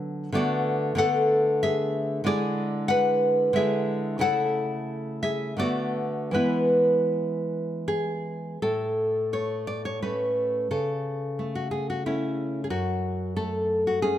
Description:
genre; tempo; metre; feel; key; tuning
romantic piece for solo classical guitar; 78-100 BPM; 3/4; rubato; A major; A4 = 440 Hz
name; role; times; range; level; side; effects
nylon-string guitar; solo; 0.0-14.2 s; F#2 to F#5; -24 LUFS; equal; none
room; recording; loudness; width
light reverb; none; -24 LUFS; side -11 dB against mid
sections
0.0-8.6 A section; 8.6-14.2 B section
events
none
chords
0.4 Bm7/D; 2.3 E7/D; 4.2 A/C#; 5.6 Bm7/D; 6.3 E; 8.6 A; 10.7 A/C#; 12.7 F#m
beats
| 0.36 0.99 1.64 | 2.27 2.90 3.56 | 4.22 4.88 5.60 | 6.34 7.11 7.87 | 8.62 9.32 10.02 | 10.71 11.39 12.07 | 12.72 13.38 14.04

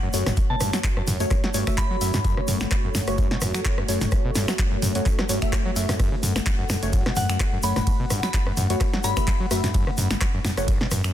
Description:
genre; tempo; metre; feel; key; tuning
acid house; 128 BPM; 4/4; swing 55% on 16ths; F# phrygian; A4 = 441 Hz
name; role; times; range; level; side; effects
dark analog pad; sustained chords; 0.0-11.1 s; A3 to F#5; -32 LUFS; left 2 dB; chorus, sidechain pumping
overdriven acid bass; riff; 0.0-11.1 s; F#1 to F#3; -27 LUFS; equal; distortion, tube saturation, cassette tape, sidechain pumping
deep mellow chord stab; stabs; 0.1-10.7 s; A3 to E5; -30 LUFS; equal; chorus, tape echo
punchy analog drum machine; drums; 0.1-11.1 s; finger snaps, handclaps, hi-hat, ride cymbal, rim click, snare drum, toms; -27 LUFS; equal; overdrive, studio reverb
egg shaker; percussion; 0.1-11.1 s; none; -34 LUFS; left 2 dB; none
electronic kick drum; drums; 0.4-10.8 s; none; -24 LUFS; equal; studio reverb
soft synth bell; melody; 0.5-2.2, 7.2-9.4 s; F#5 to B5; -32 LUFS; left 2 dB; chorus, phaser, ping-pong delay
room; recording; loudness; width
little or no reverb; dense, heavily limited modern master; -20 LUFS; side -11 dB against mid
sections
0.0-11.1 A section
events
none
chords
0.0 F#m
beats
| 0.37 0.84 1.31 1.78 | 2.25 2.71 3.18 3.65 | 4.12 4.59 5.06 5.53 | 6.00 6.46 6.93 7.40 | 7.87 8.34 8.81 9.28 | 9.74 10.21 10.68

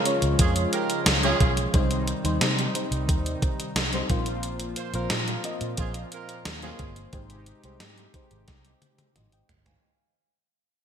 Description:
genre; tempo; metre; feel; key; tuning
1980s-style pop; 89 BPM; 4/4; straight; Ab major; A4 = 440 Hz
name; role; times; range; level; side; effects
FM electric piano with soft pad layer; accompaniment; 0.0-10.0 s; G3 to Ab5; -31 LUFS; left 2 dB; chorus
brassy analog pad; sustained chords; 0.0-9.8 s; Bb2 to G4; -34 LUFS; right 1 dB; chorus, tremolo
warm horn section; stabs; 0.0-6.9 s; C4 to C5; -32 LUFS; right 5 dB; ping-pong delay
gated 80s digital drum machine; drums; 0.1-9.8 s; hi-hat, kick drum, snare drum, toms; -25 LUFS; equal; gated reverb, gated reverb snare
vintage muted fingered electric bass; bass; 0.2-9.7 s; G1 to C3; -29 LUFS; right 1 dB; none
room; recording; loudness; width
moderate lush hall reverb, RT60 1.7 s; bright 1980s-style digital production; -23 LUFS; side -8 dB against mid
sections
0.0-9.8 A section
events
fade-out 0.0-9.8; drum fill 8.5-9.8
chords
0.0 Db; 1.7 Cm; 4.1 Bbsus2; 7.1 Abmaj7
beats
0.39 1.06 | 1.74 2.41 3.09 3.76 | 4.44 5.11 5.78 6.46 | 7.13 7.81 8.48 9.15

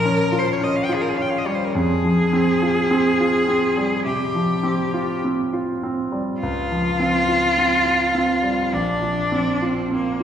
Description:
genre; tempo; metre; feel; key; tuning
classical, impressionist duo for cello and grand piano; 51 BPM; 4/4; rubato; F minor; A4 = 440 Hz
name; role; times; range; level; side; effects
rich cello; melody; 0.0-10.2 s; Bb3 to G5; -21 LUFS; left 2 dB; none
clear concert grand piano; accompaniment; 0.0-10.2 s; Bb1 to F4; -21 LUFS; right 1 dB; none
room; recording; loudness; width
wet recital hall reverb, RT60 1.6 s; recorded in a church or concert hall; -18 LUFS; side -9 dB against mid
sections
0.0-10.2 A section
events
none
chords
0.0 Eb9; 1.7 Fmadd9; 6.4 Dbmaj7#11; 8.7 Bbsus2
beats
0.61 | 1.73 2.88 4.04 5.21 | 6.39 7.56 8.73 9.92

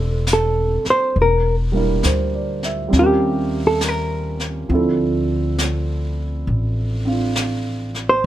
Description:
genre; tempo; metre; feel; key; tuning
jazz ballad; 68 BPM; 4/4; swing 66% on 8ths; unclear; A4 = 439 Hz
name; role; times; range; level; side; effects
hollow-body jazz guitar; melody; 0.0-8.2 s; G4 to C5; -18 LUFS; equal; none
warm upright piano; accompaniment; 0.0-8.3 s; F3 to E5; -22 LUFS; right 2 dB; none
upright bass; bass; 0.0-8.2 s; E1 to Eb2; -21 LUFS; equal; none
jazz brush drum kit; drums; 0.3-8.3 s; brushed snare drum, hi-hat, snare drum; -27 LUFS; left 1 dB; none
room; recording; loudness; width
light reverb; none; -17 LUFS; side -13 dB against mid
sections
0.0-8.3 A section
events
hollow-body jazz guitar solo 0.0-8.3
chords
0.0 Am7; 1.2 Em7b5; 2.9 Eb13; 4.7 Dm7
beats
0.27 | 1.16 2.04 2.92 3.81 | 4.70 5.59 6.48 7.36 | 8.24

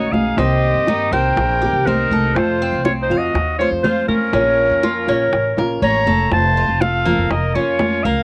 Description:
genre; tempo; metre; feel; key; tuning
latin, Cuban son and guajira; 121 BPM; 4/4; straight; Bb harmonic minor; A4 = 439 Hz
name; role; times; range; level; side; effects
bright clarinet; melody; 0.0-8.2 s; Bb4 to Bb5; -22 LUFS; equal; cassette tape
growling trumpet; second line; 0.0-8.2 s; Db4 to Db5; -32 LUFS; equal; cassette tape
nylon-string guitar; accompaniment; 0.0-8.2 s; B2 to G4; -26 LUFS; equal; cassette tape
Cuban tres; arpeggios; 0.0-8.2 s; Bb3 to F5; -24 LUFS; equal; cassette tape, plate reverb
upright bass; bass; 0.0-8.2 s; F1 to G2; -24 LUFS; equal; none
bongos; percussion; 0.1-8.0 s; none; -25 LUFS; equal; none
congas; percussion; 0.1-8.2 s; none; -25 LUFS; equal; none
room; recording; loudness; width
moderate booth ambience, RT60 0.2 s; home recording on cassette; -17 LUFS; mono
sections
0.0-6.3 A section; 6.3-8.2 B section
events
drum fill 5.6-6.3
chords
0.4 Cm7; 2.4 F; 4.3 Bbm; 6.3 F; 7.3 Bbm/F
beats
| 0.38 0.88 1.37 1.87 | 2.36 2.85 3.35 3.84 | 4.34 4.83 5.33 5.82 | 6.31 6.81 7.30 7.79

